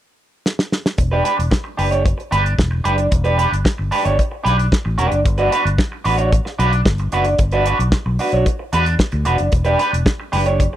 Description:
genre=disco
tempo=112 BPM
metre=4/4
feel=straight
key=unclear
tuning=A4 = 440 Hz
part: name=damped 70s drum kit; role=drums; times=0.5-10.7 s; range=hi-hat, kick drum, snare drum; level=-18 LUFS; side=equal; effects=none
part: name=electric guitar at the edge of break-up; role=accompaniment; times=1.0-10.8 s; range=D4 to C#5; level=-18 LUFS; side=right 2 dB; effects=wah
part: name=fingered electric bass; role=bass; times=1.0-10.7 s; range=E1 to E2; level=-19 LUFS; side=equal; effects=tube saturation
room=small room ambience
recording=dry, close 1970s-style studio recording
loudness=-15 LUFS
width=side -12 dB against mid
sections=1.0-10.8 A section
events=drum fill 0.5-1.0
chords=0.0 N.C.; 1.0 Em7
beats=0.45 | 0.99 1.52 2.06 2.59 | 3.12 3.66 4.19 4.72 | 5.26 5.79 6.33 6.86 | 7.39 7.93 8.46 8.99 | 9.53 10.06 10.60

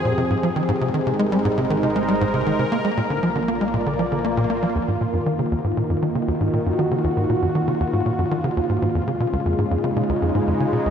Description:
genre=ambient, sequencer-driven space music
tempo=118 BPM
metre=4/4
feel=straight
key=Eb minor from 4.8 s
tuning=A4 = 440 Hz
part: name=sweeping resonant pad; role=sustained chords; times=0.0-10.9 s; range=Db3 to D5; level=-22 LUFS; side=equal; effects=chorus
part: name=analog drone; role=bass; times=0.0-4.7 s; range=Ab1 to F2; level=-37 LUFS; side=equal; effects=chorus
part: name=tight sequencer bass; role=riff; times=0.1-10.9 s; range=Db2 to Bb3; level=-22 LUFS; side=equal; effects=wide subtle chorus, ping-pong delay
room=wet lush hall reverb, RT60 2.6 s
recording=dreamy mix soaked in reverb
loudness=-19 LUFS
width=side -8 dB against mid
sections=0.0-4.8 A section; 4.8-10.9 B section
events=none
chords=0.0 Fm; 0.7 Abadd9; 2.7 Bb; 4.8 Ebm; 8.8 Db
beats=0.18 | 0.69 1.19 1.70 2.21 | 2.72 3.23 3.74 4.25 | 4.75 5.26 5.77 6.28 | 6.79 7.30 7.80 8.31 | 8.82 9.33 9.84 10.35 | 10.86

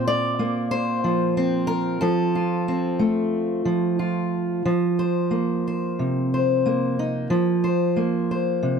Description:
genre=folk, solo fingerstyle acoustic guitar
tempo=92 BPM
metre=4/4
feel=straight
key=unclear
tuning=A4 = 440 Hz
part: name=fingerpicked steel-string acoustic guitar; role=solo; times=0.0-8.8 s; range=Bb2 to D5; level=-20 LUFS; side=equal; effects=none
room=light reverb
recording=none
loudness=-20 LUFS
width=side -6 dB against mid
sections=0.0-4.7 A section; 4.7-8.8 B section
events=none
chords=0.0 Bbsus2; 2.0 F; 4.7 Fsus4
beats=0.08 0.72 1.36 | 2.01 2.66 3.32 3.99 | 4.66 5.32 5.99 6.65 | 7.30 7.96 8.61

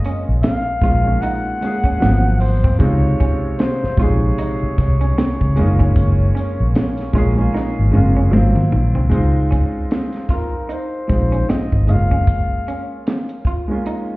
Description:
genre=R&B, neo-soul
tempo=76 BPM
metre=4/4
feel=swing 58% on 16ths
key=Db major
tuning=A4 = 441 Hz
part: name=trumpet with bucket mute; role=melody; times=0.0-13.1 s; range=Bb4 to Gb5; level=-26 LUFS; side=left 1 dB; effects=plate reverb, tape echo
part: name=warm concert grand piano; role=accompaniment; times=0.0-14.2 s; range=C3 to Ab4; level=-22 LUFS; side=equal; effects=plate reverb
part: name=compact cocktail drum kit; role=drums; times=0.0-14.1 s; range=hi-hat, kick drum, snare drum, toms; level=-18 LUFS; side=equal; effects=none
part: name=electric guitar through a small old amp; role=second line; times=0.1-14.0 s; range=Bb3 to F4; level=-28 LUFS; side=right 3 dB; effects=plate reverb
part: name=vintage muted fingered electric bass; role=bass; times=0.3-12.5 s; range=Gb1 to Db2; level=-15 LUFS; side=equal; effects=none
room=light reverb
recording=heard muffled through a wall, stone room reverb, EQ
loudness=-15 LUFS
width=side -21 dB against mid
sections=0.0-9.1 A section; 9.1-14.2 B section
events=drum fill 7.5-9.1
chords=0.0 Gbmaj9; 2.0 Ab13; 2.8 Dbmaj7; 5.6 Gbmaj9; 8.3 Ab13; 9.1 Dbmaj7; 11.9 Gbmaj9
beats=0.43 1.22 2.01 | 2.80 3.59 4.38 5.17 | 5.96 6.75 7.54 8.33 | 9.12 9.91 10.70 11.49 | 12.28 13.07 13.86

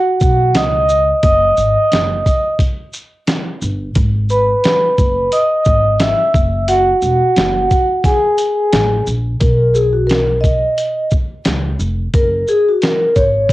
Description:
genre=hip hop, jazz-hop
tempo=88 BPM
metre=4/4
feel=swing 59% on 16ths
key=unclear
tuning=A4 = 440 Hz
part: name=vibraphone with soft mallets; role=accompaniment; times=0.0-13.5 s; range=F#4 to E6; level=-13 LUFS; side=equal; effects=cassette tape
part: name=upright bass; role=bass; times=0.2-13.4 s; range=E1 to C#2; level=-18 LUFS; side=equal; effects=none
part: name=dusty soul sampler-style drum kit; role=drums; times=0.2-13.5 s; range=hi-hat, kick drum, shaker, snare drum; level=-16 LUFS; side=equal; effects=none
room=light reverb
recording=home recording on cassette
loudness=-12 LUFS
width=side -17 dB against mid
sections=0.0-9.4 A section; 9.4-13.5 B section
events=vibraphone solo 0.0-9.4, 9.4-13.5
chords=0.0 B5; 0.5 C#sus2; 1.2 N.C.; 4.0 G#m; 6.3 F#7sus2; 9.4 B; 11.5 C#; 12.1 F#add9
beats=0.55 | 1.23 1.91 2.59 3.27 | 3.95 4.64 5.32 6.00 | 6.68 7.36 8.04 8.73 | 9.41 10.09 10.77 11.45 | 12.14 12.82 13.50

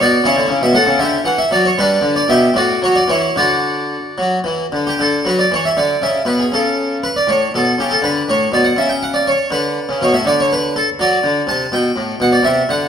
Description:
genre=classical, baroque-style suite movement for harpsichord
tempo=72-84 BPM (dotted quarters)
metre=6/8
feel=rubato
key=D major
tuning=A4 = 437 Hz
part: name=harpsichord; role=solo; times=0.0-12.9 s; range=A2 to A5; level=-13 LUFS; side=equal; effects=none
room=wet recital hall reverb, RT60 1.5 s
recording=none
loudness=-13 LUFS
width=side -8 dB against mid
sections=0.0-5.0 A section; 5.0-12.9 B section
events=none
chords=0.2 A/C#; 1.0 D; 1.7 G; 2.5 A5; 3.4 D; 5.8 Bm69; 6.5 A/C#; 8.0 D5; 8.8 N.C.; 9.5 D5; 11.0 D7; 11.7 G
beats=| 0.23 0.97 | 1.74 2.55 | 3.36 4.18 | 5.00 5.77 | 6.52 7.28 | 8.04 8.78 | 9.53 10.26 | 10.99 11.72 | 12.45

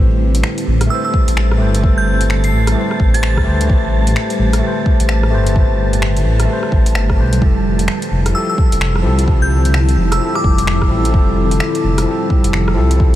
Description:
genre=future garage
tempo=129 BPM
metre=4/4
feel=swing 61% on 16ths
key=A minor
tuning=A4 = 440 Hz
part: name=bright tine electric piano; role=accompaniment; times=0.0-13.2 s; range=F3 to C5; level=-21 LUFS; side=left 3 dB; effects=fast stereo tremolo, sidechain pumping, tape echo
part: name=ethereal airy pad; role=sustained chords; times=0.0-13.2 s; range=A2 to E4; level=-22 LUFS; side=right 1 dB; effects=ensemble chorus, built-in reverb, phaser, sidechain pumping
part: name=dark detuned saw bass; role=bass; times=0.0-13.2 s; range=F1 to D2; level=-15 LUFS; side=equal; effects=sidechain pumping
part: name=wind-like tuned noise texture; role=texture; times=0.6-13.2 s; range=A5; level=-28 LUFS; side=right 5 dB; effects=built-in reverb
part: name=deep house drum kit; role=drums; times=0.3-13.0 s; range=finger snaps, hi-hat, rim click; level=-24 LUFS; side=equal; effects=none
part: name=glassy synth bell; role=melody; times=0.9-3.6, 8.3-10.8 s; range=D6 to C7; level=-24 LUFS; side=right 1 dB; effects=chorus, phaser, analog delay
part: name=electronic kick drum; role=drums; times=1.1-13.1 s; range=none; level=-13 LUFS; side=equal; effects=none
room=moderate huge ambient reverb, RT60 7.9 s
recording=dreamy mix soaked in reverb, vinyl crackle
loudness=-12 LUFS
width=side -13 dB against mid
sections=0.0-13.2 A section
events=none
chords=0.0 Am9; 7.4 Fmaj9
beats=0.44 0.90 1.37 | 1.83 2.30 2.77 3.23 | 3.69 4.16 4.62 5.09 | 5.55 6.02 6.49 6.95 | 7.42 7.88 8.35 8.81 | 9.28 9.74 10.21 10.67 | 11.14 11.60 12.07 12.53 | 13.00

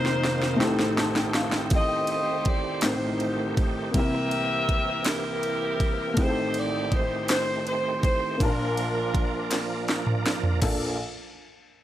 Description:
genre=slow gospel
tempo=54 BPM (dotted quarters)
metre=6/8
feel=straight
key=unclear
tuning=A4 = 440 Hz
part: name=clear saxophone section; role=melody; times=0.0-9.9 s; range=D4 to E5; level=-28 LUFS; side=equal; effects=none
part: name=dark upright piano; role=accompaniment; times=0.0-11.0 s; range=F1 to A5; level=-29 LUFS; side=left 2 dB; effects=none
part: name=bright tonewheel organ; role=sustained chords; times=0.0-11.0 s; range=Eb3 to Bb4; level=-32 LUFS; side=right 4 dB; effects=fast rotary speaker, chorus vibrato
part: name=drum and bass drum kit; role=drums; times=0.1-10.8 s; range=crash cymbal, kick drum, ride cymbal, snare drum, toms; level=-27 LUFS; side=equal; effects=overdrive
part: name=group handclap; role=percussion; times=2.8-11.0 s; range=none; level=-34 LUFS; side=left 5 dB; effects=none
room=light reverb, studio reverb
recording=none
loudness=-23 LUFS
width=side -12 dB against mid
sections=0.0-10.6 A section; 10.6-11.8 B section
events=drum fill 0.0-1.7, 9.5-10.6; upright piano fill 0.6-1.7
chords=0.0 F7sus4; 0.6 Am7b5; 3.9 C7; 6.2 Am7b5; 8.4 Bbmaj7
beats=0.60 | 1.72 2.83 | 3.94 5.06 | 6.17 7.29 | 8.40 9.51 | 10.62

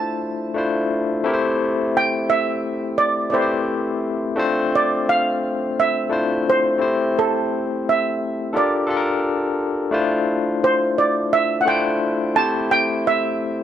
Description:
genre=soul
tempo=86 BPM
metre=4/4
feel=swing 58% on 16ths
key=unclear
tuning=A4 = 440 Hz
part: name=steel pan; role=melody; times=0.0-13.6 s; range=A4 to A5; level=-20 LUFS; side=right 3 dB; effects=none
part: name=barky tine electric piano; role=accompaniment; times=0.0-13.6 s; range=A3 to C5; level=-20 LUFS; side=left 3 dB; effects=overdrive, fast stereo tremolo
room=light reverb, small room ambience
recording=none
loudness=-18 LUFS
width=side -10 dB against mid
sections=0.0-9.9 A section; 9.9-13.6 A section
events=none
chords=0.0 Dm9; 1.3 Am7; 4.4 Dm9; 6.8 Am7; 8.5 Gm9; 9.9 Dm9; 12.4 Am7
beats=0.22 0.91 | 1.60 2.30 2.99 3.69 | 4.38 5.07 5.77 6.46 | 7.15 7.85 8.54 9.24 | 9.93 10.62 11.32 12.01 | 12.71 13.40

